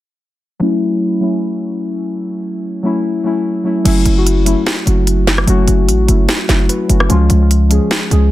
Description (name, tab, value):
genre	hip hop, trap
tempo	148 BPM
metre	4/4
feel	half-time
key	F# minor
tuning	A4 = 440 Hz
part	muted felt-like synth keys	accompaniment	0.6-8.3 s	E#3 to B4	-15 LUFS	left 2 dB	chorus, low-pass filter
part	hard-hitting 808-style bass	bass	3.9-8.3 s	F#1 to C#2	-12 LUFS	equal	none
part	trap drum kit	drums	3.9-8.2 s	crash cymbal, hi-hat, rim click, snare drum	-18 LUFS	equal	none
room	light reverb, digital ambience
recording	dense, heavily limited modern master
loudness	-12 LUFS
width	side -15 dB against mid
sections	0.6-3.9 A section; 3.9-8.3 B section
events	filter sweep on synth keys 0.6-3.9; synth keys fill 6.5-7.1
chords	0.6 F#m7; 7.1 C#